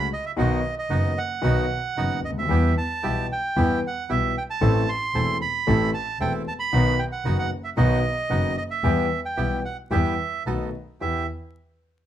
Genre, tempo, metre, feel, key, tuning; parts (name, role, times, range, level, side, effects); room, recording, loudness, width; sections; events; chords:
tango; 114 BPM; 4/4; rubato; E harmonic minor; A4 = 440 Hz
bandoneon; melody; 0.0-11.3 s; D#5 to C6; -27 LUFS; right 4 dB
warm concert grand piano; accompaniment; 0.0-11.2 s; E1 to A4; -26 LUFS; left 3 dB
bandoneon; stabs; 0.0-11.2 s; B3 to A4; -32 LUFS; right 6 dB
dark double bass; bass; 0.0-11.2 s; E1 to E2; -25 LUFS; right 1 dB
light reverb; close, detailed microphones, vinyl crackle; -21 LUFS; side -11 dB against mid
0.0-11.0 A section; 11.0-12.1 B section
0.4 B; 2.5 Em; 4.6 Am; 6.7 B; 8.8 Em; 10.5 B7; 11.0 Em